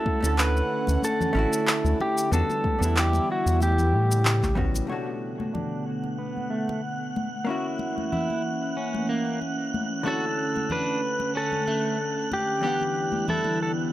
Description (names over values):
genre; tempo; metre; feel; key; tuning
sunset chillout; 93 BPM; 4/4; swing 54% on 16ths; B minor; A4 = 440 Hz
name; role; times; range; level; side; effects
pedal steel guitar; melody; 0.0-4.5, 10.1-13.7 s; F#4 to B4; -27 LUFS; equal; analog delay
vintage hollow-body jazz guitar; accompaniment; 0.0-13.9 s; E2 to F#5; -32 LUFS; moving between left 4 dB and right 3 dB; auto-pan, tape echo
airy breathy pad; sustained chords; 0.0-13.9 s; C#3 to F#5; -31 LUFS; equal; chorus
electronic kick drum; drums; 0.1-4.7 s; none; -30 LUFS; equal; studio reverb
congas; percussion; 0.1-13.6 s; none; -33 LUFS; left 3 dB; none
round analog bass; bass; 0.2-4.8 s; A1 to A2; -23 LUFS; equal; tube saturation
electronic shaker and handclaps; drums; 0.2-4.9 s; none; -27 LUFS; equal; studio reverb
electric guitar at the edge of break-up; arpeggios; 4.9-13.6 s; A3 to G4; -35 LUFS; right 2 dB; low-pass filter, tape echo
wind-like tuned noise texture; texture; 5.6-13.9 s; F#6; -36 LUFS; right 3 dB; built-in reverb
room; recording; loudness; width
little or no reverb; dry, gritty hardware recording; -23 LUFS; side -14 dB against mid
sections
0.0-4.9 A section; 4.9-13.9 B section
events
filter sweep on clean electric guitar 4.9-13.9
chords
0.0 Dmaj7; 2.3 Em7; 3.6 A7; 4.9 Bm7; 7.5 F#7; 10.1 Dmaj7; 12.6 Em7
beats
0.38 1.03 1.67 | 2.32 2.96 3.61 4.25 | 4.90 5.54 6.19 6.83 | 7.48 8.12 8.77 9.41 | 10.06 10.71 11.35 12.00 | 12.64 13.29